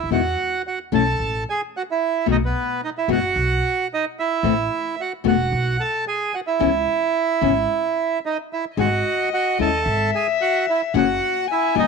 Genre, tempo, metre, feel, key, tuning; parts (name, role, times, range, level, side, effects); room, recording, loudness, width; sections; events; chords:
tango; 111 BPM; 4/4; rubato; E major; A4 = 440 Hz
bandoneon; melody; 0.0-11.9 s; B3 to A5; -21 LUFS; right 5 dB
upright bass; bass; 0.0-11.9 s; E1 to E2; -26 LUFS; right 1 dB
nylon-string guitar; accompaniment; 0.1-11.8 s; B2 to G#4; -22 LUFS; left 13 dB
dark violin; second line; 8.8-11.9 s; D#5 to G#5; -23 LUFS; left 11 dB
light reverb; 1960s-style stereo; -19 LUFS; side -4 dB against mid
0.0-11.9 A section
0.1 E5; 1.2 A5; 2.3 B; 3.4 Esus2/B; 4.4 A5; 5.5 B5; 6.6 C#m7; 8.8 G#5; 9.9 F#m9/G#; 10.9 F#7